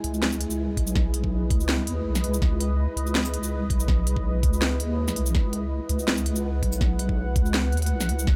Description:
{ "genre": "half-time drum and bass", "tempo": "164 BPM", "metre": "4/4", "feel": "swing 54% on 16ths, half-time", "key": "C# minor", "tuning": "A4 = 440 Hz", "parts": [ { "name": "deep dark ambient pad", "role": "sustained chords", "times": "0.0-8.4 s", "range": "G#3 to F#5", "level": "-35 LUFS", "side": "equal", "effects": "chorus, built-in reverb, sidechain pumping" }, { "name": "deep soft wobble bass", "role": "bass", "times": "0.0-8.4 s", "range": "B1 to D#2", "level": "-28 LUFS", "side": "equal", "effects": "chorus" }, { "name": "drum and bass drum kit", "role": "drums", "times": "0.0-8.4 s", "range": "hi-hat, shaker, snare drum", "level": "-30 LUFS", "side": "equal", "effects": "none" }, { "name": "electronic kick drum", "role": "drums", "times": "0.8-8.4 s", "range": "none", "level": "-26 LUFS", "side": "equal", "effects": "none" } ], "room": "little or no reverb", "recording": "none", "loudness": "-25 LUFS", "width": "mono", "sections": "0.0-8.4 A section", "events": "none", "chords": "0.0 C#madd9" }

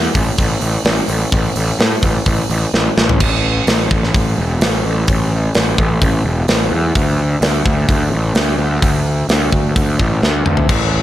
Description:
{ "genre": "heavy metal", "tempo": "128 BPM", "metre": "4/4", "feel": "straight", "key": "unclear", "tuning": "A4 = 440 Hz", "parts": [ { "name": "fuzz picked electric bass", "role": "bass", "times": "0.0-11.0 s", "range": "E1 to A2", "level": "-16 LUFS", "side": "equal", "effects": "overdrive" }, { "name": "tight metal drum kit", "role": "drums", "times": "0.1-10.8 s", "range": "crash cymbal, hi-hat, kick drum, snare drum, toms", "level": "-16 LUFS", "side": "equal", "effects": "none" } ], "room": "little or no reverb", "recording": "none", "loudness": "-13 LUFS", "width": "side -13 dB against mid", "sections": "0.0-3.2 A section; 3.2-11.0 B section", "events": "drum fill 2.7-3.2, 10.2-10.7", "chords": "none" }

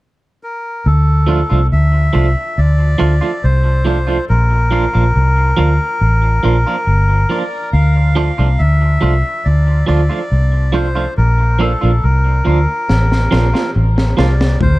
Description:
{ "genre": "dub reggae", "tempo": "70 BPM", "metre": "4/4", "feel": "straight", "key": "D minor", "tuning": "A4 = 440 Hz", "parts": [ { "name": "melodica", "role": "melody", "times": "0.4-14.8 s", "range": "A4 to F5", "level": "-20 LUFS", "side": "left 1 dB", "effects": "dub echo" }, { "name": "vintage muted fingered electric bass", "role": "bass", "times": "0.9-14.8 s", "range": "G1 to D2", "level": "-12 LUFS", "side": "equal", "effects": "none" }, { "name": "clean electric guitar", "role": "accompaniment", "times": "1.3-14.3 s", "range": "F3 to F4", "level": "-21 LUFS", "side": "right 4 dB", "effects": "tremolo, dub echo" }, { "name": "crunchy breakbeat drum kit", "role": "drums", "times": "12.9-14.8 s", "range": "kick drum, snare drum", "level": "-18 LUFS", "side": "equal", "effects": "none" }, { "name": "electric guitar at the edge of break-up", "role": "arpeggios", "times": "14.6-14.8 s", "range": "A2", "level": "-19 LUFS", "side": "left 6 dB", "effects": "spring reverb" } ], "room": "little or no reverb", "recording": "dark, warm production", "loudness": "-11 LUFS", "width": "side -19 dB against mid", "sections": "0.8-14.8 A section", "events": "drum fill 12.9-14.6", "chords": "0.0 N.C.; 0.8 Dm; 4.3 Bb; 7.7 Dm; 11.2 Bb" }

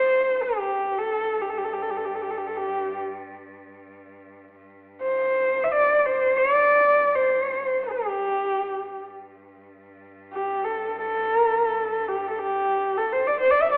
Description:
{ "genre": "mongolian traditional, Mongolian folk", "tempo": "free time", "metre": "none", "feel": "none", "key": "unclear", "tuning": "A4 = 440 Hz", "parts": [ { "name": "dark horsehead fiddle", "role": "melody", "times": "0.0-13.8 s", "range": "G4 to E5", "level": "-24 LUFS", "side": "equal", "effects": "none" }, { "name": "warm cello", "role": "drone", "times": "0.0-13.8 s", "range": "G2", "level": "-46 LUFS", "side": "equal", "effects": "none" } ], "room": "moderate recital hall reverb, RT60 1.6 s", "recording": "telephone sound", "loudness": "-24 LUFS", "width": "mono", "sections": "0.0-4.6 A section; 4.6-13.8 A section", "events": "none", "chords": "none" }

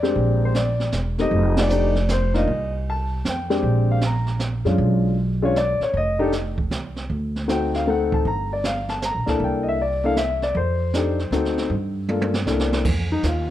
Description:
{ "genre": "jazz piano trio", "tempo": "156 BPM", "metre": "3/4", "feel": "swing 66% on 8ths", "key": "F mixolydian", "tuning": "A4 = 437 Hz", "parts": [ { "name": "warm upright piano", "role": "melody", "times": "0.0-13.5 s", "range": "Ab3 to Bb5", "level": "-22 LUFS", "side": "left 3 dB", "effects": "none" }, { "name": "upright bass", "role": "bass", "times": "0.0-13.5 s", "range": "E1 to G2", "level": "-23 LUFS", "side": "right 1 dB", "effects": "none" }, { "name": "jazz brush drum kit", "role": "drums", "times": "0.0-13.5 s", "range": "brushed snare drum, crash cymbal, hi-hat, kick drum, ride cymbal, snare drum, toms", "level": "-28 LUFS", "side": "right 3 dB", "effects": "none" } ], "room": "light reverb", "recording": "dark, warm production", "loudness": "-19 LUFS", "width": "side -12 dB against mid", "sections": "0.0-12.9 A section", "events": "band accent 1.5; drum fill 12.1-12.9", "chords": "0.2 Bb13; 1.3 F13; 2.5 Cm6; 3.2 Fsus2; 3.6 Bb13; 4.8 Bdim7; 5.9 F7(no3); 7.1 D7b9; 8.2 Gm; 9.4 C13; 10.6 F13; 11.3 D7b9; 11.7 Gm7; 12.5 C13; 12.9 N.C." }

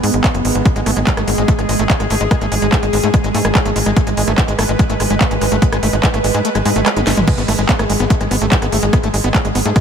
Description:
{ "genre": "psychedelic trance", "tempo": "145 BPM", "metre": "4/4", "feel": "straight", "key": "unclear", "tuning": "A4 = 440 Hz", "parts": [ { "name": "evolving wavetable pad", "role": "sustained chords", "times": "0.0-9.8 s", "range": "G#3 to B4", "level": "-20 LUFS", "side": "right 1 dB", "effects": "chorus, built-in reverb, sidechain pumping" }, { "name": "tight sequencer bass", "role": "bass", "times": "0.0-9.7 s", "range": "F#1 to G#2", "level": "-18 LUFS", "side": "equal", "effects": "none" }, { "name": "techno drum kit", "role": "drums", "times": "0.0-9.8 s", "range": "crash cymbal, handclaps, hi-hat, rim click, snare drum, toms", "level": "-20 LUFS", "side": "right 1 dB", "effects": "none" }, { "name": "electronic kick drum", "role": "drums", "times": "0.2-9.8 s", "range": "none", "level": "-14 LUFS", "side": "equal", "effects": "none" }, { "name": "screaming distorted acid line", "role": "riff", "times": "0.7-9.8 s", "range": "G#3 to B3", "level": "-21 LUFS", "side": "equal", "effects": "distortion, chorus, auto-pan, sidechain pumping, diffuse ambient delay" }, { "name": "swell", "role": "sound effects", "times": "6.6-7.3 s", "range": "none", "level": "-30 LUFS", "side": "right 3 dB", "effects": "none" } ], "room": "moderate huge ambient reverb, RT60 7.1 s", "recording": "dreamy mix soaked in reverb", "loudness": "-12 LUFS", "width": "side -7 dB against mid", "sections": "0.0-9.8 A section", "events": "kick drops out 6.4-7.3; swell 6.6-7.3; drum fill 7.0-7.3", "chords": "0.0 F#sus4 (rootless)" }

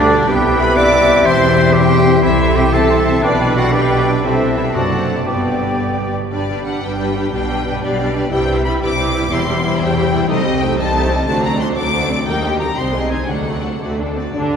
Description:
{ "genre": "classical, dramatic, fast romantic movement for symphony orchestra", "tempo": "121 BPM (dotted quarters)", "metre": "6/8", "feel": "straight", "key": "G major", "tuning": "A4 = 439 Hz", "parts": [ { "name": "rich symphonic violin section", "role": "melody", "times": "0.0-14.6 s", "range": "D4 to D6", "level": "-23 LUFS", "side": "left 3 dB", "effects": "none" }, { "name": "bright clarinet", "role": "second line", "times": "0.0-6.1, 14.3-14.6 s", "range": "B3 to D5", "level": "-18 LUFS", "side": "equal", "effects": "none" }, { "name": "rich symphonic violin section", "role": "second line", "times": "0.0-14.6 s", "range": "D4 to D6", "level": "-24 LUFS", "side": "left 2 dB", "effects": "none" }, { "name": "silver concert flute", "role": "second line", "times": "0.0-6.1 s", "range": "D4 to A5", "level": "-26 LUFS", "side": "left 1 dB", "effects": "none" }, { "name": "warm oboe", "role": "second line", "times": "0.0-6.1 s", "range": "D4 to E5", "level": "-23 LUFS", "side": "right 2 dB", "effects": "none" }, { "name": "warm studio viola section", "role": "accompaniment", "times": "0.0-14.6 s", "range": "D3 to B4", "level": "-21 LUFS", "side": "right 1 dB", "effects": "none" }, { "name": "dark French horn section", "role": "sustained chords", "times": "0.0-6.1, 14.3-14.6 s", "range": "D3 to E4", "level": "-24 LUFS", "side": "left 2 dB", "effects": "none" }, { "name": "concert harp", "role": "arpeggios", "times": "0.0-14.6 s", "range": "F#2 to E5", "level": "-22 LUFS", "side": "left 4 dB", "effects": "none" }, { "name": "clear symphonic cello section", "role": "bass", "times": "0.0-14.6 s", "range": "C2 to D3", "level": "-22 LUFS", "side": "right 3 dB", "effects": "none" }, { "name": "rich symphonic double bass section", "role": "bass", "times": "0.0-14.6 s", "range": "E1 to Eb2", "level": "-23 LUFS", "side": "right 3 dB", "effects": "none" } ], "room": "wet cathedral reverb, RT60 5.0 s", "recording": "recorded in a church or concert hall", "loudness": "-13 LUFS", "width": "side -7 dB against mid", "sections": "0.0-6.3 A section; 6.3-14.3 A section", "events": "none", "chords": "0.3 Cmaj7; 1.3 C/E; 2.2 Am/C; 3.2 G/B; 4.2 Am/C; 4.7 D7/F#; 5.3 G; 7.3 G/B; 8.3 Cmaj7; 9.3 C/E; 10.3 Am7b5/C; 11.3 D7; 12.3 Eb; 12.8 Ab/C; 13.3 D" }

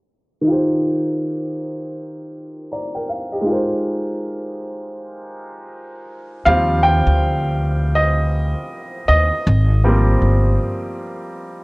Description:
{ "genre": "lo-fi hip hop", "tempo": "80 BPM", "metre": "4/4", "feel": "swing 61% on 16ths", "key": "Eb major", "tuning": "A4 = 440 Hz", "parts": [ { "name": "bright upright piano", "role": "accompaniment", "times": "0.4-11.6 s", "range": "Eb3 to Bb5", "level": "-20 LUFS", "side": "equal", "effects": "cassette tape, low-pass filter" }, { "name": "upright bass", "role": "bass", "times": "6.5-10.6 s", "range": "G1 to Eb2", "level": "-16 LUFS", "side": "equal", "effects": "none" } ], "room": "moderate studio reverb, RT60 0.6 s", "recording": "cassette tape, low-pass filter", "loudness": "-16 LUFS", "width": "side -25 dB against mid", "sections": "0.5-6.5 A section; 6.5-11.6 B section", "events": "filter sweep 0.5-6.5; upright piano solo 6.5-11.6", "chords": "0.5 Eb69; 3.5 Abmaj13; 6.5 Eb69; 9.5 Abmaj13" }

